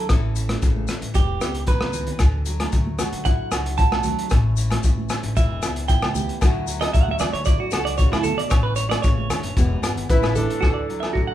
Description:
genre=highlife guitar band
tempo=114 BPM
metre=4/4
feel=straight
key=D major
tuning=A4 = 440 Hz
part: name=nylon-string guitar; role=accompaniment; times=0.0-11.3 s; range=A2 to A4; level=-31 LUFS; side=left 4 dB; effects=none
part: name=clean electric guitar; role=arpeggios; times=0.0-11.3 s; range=E4 to A5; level=-26 LUFS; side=right 6 dB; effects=none
part: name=upright bass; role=bass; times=0.1-10.8 s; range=E1 to D2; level=-26 LUFS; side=equal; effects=none
part: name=crunchy breakbeat drum kit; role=drums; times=0.1-11.3 s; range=hi-hat, kick drum, rim click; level=-21 LUFS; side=left 1 dB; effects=none
part: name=maracas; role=percussion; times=0.1-10.6 s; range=none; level=-37 LUFS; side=left 7 dB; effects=none
part: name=congas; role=percussion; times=0.5-10.5 s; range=none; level=-32 LUFS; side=right 2 dB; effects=none
part: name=agogo bells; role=percussion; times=2.2-11.2 s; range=none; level=-33 LUFS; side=equal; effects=none
part: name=fingerpicked steel-string acoustic guitar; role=melody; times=10.1-11.3 s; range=D4 to B4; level=-24 LUFS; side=right 2 dB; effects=none
part: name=breathy trumpet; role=second line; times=10.1-11.3 s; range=D4 to E4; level=-31 LUFS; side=left 7 dB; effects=none
room=light reverb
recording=band playing live in one room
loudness=-19 LUFS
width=side -12 dB against mid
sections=0.0-10.6 A section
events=clean electric guitar solo 0.0-10.6; drum fill 1.8-2.2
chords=0.1 A; 1.2 Em; 2.2 Dadd9; 4.3 A5; 5.4 Em; 6.4 Dadd9; 8.5 A; 9.6 Em; 10.1 A5; 10.6 Dadd9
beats=| 0.10 0.63 1.16 1.68 | 2.21 2.73 3.26 3.79 | 4.31 4.84 5.37 5.89 | 6.42 6.95 7.47 8.00 | 8.52 9.05 9.57 10.10 | 10.63 11.15

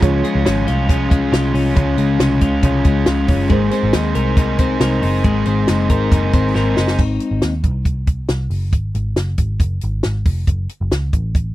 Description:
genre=jangly indie pop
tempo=138 BPM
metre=4/4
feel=straight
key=Db major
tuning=A4 = 440 Hz
part: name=overdriven electric guitar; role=accompaniment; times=0.0-7.0 s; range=Db3 to C5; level=-22 LUFS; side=right 6 dB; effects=none
part: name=reed electric piano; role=accompaniment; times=0.0-7.0 s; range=F4 to Db5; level=-27 LUFS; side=right 9 dB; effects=fast tremolo
part: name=twelve-string electric guitar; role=arpeggios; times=0.0-7.5 s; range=Db3 to Bb4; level=-18 LUFS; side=left 4 dB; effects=spring reverb, slapback echo
part: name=vintage muted picked electric bass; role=bass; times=0.0-11.5 s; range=F1 to Eb2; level=-19 LUFS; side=equal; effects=none
part: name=compact cocktail drum kit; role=drums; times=0.0-11.4 s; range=crash cymbal, hi-hat, kick drum, snare drum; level=-16 LUFS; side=equal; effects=none
room=little or no reverb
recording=dry, close 1970s-style studio recording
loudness=-14 LUFS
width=side -16 dB against mid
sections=0.0-7.0 A section; 7.0-11.5 B section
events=drum fill 6.5-7.0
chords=0.0 Db; 3.5 Abadd9; 7.0 Ab; 10.5 Gbm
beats=| 0.02 0.46 0.89 1.33 | 1.76 2.20 2.63 3.07 | 3.50 3.94 4.38 4.81 | 5.25 5.68 6.12 6.55 | 6.99 7.42 7.86 8.29 | 8.73 9.16 9.60 10.03 | 10.47 10.90 11.34

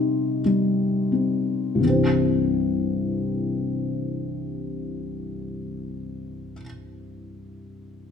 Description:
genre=classical, lyrical solo piano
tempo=44 BPM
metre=4/4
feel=rubato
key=unclear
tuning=A4 = 440 Hz
part: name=felt-muted upright piano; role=solo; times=0.0-8.1 s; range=C2 to C6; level=-23 LUFS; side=left 2 dB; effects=none
room=light reverb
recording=minimal, uncompressed stereo recording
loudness=-22 LUFS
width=side -7 dB against mid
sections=0.0-1.8 A section; 1.8-7.3 B section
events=slowing down 0.0-1.8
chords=0.0 Cm; 1.8 C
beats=0.46 | 1.82 3.23 4.60 5.96

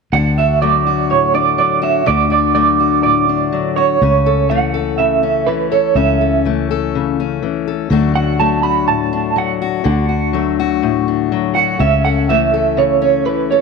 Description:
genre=folk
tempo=123 BPM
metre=4/4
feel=straight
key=D major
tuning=A4 = 441 Hz
part: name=electric guitar through a small old amp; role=melody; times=0.1-13.6 s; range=B4 to B5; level=-15 LUFS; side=right 10 dB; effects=tremolo
part: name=fingerpicked steel-string acoustic guitar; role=accompaniment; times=0.1-13.6 s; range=A2 to A4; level=-17 LUFS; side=left 13 dB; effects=none
part: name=fingered electric bass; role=bass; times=0.1-13.6 s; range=C#2 to D2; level=-20 LUFS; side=equal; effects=none
room=moderate echo chamber reverb, RT60 1.8 s, small room reverb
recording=1960s-style stereo with parts hard left and right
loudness=-12 LUFS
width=side -4 dB against mid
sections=0.1-13.6 A section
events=none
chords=0.1 D; 4.0 A/C#; 7.9 D; 11.8 A/C#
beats=| 0.13 0.61 1.10 1.58 | 2.07 2.56 3.04 3.53 | 4.01 4.50 4.99 5.47 | 5.96 6.44 6.93 7.42 | 7.90 8.39 8.88 9.36 | 9.85 10.34 10.82 11.31 | 11.79 12.28 12.77 13.25

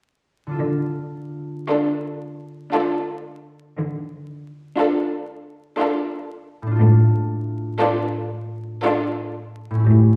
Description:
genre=classical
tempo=58 BPM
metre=3/4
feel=rubato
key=D minor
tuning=A4 = 440 Hz
part: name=concert harp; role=arpeggios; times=0.5-10.2 s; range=A2 to A4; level=-24 LUFS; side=equal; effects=none
part: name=rich symphonic cello section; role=bass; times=0.6-10.2 s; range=A2 to D3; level=-22 LUFS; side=equal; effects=none
part: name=warm symphonic violin section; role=melody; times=1.7-9.7 s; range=A4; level=-28 LUFS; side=equal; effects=none
part: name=warm symphonic violin section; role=second line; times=1.7-9.7 s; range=F4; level=-29 LUFS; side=equal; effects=none
part: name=rich symphonic viola section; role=accompaniment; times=1.7-9.6 s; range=D4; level=-27 LUFS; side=equal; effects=none
room=wet recital hall reverb, RT60 1.3 s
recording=heard from further back in the room, vinyl crackle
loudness=-22 LUFS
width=mono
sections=0.6-10.2 A section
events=none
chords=0.6 Dm; 6.8 Dm/A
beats=| 0.58 1.69 2.73 | 3.77 4.79 5.79 | 6.80 7.82 8.85 | 9.90

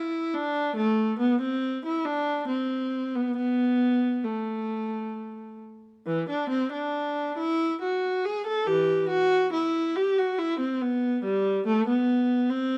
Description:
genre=classical, baroque-style suite movement for unaccompanied viola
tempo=70 BPM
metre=3/4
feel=rubato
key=A minor, E minor from 6.1 s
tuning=A4 = 440 Hz
part: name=rich viola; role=solo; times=0.0-12.8 s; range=E3 to A4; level=-26 LUFS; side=equal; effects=none
room=light reverb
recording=dark, warm production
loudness=-26 LUFS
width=mono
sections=0.0-6.1 A section; 6.1-12.8 A section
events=none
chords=none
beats=| 0.75 1.61 2.47 | 3.35 4.24 5.13 | 6.05 6.94 7.80 | 8.66 9.52 10.37 | 11.22 12.07

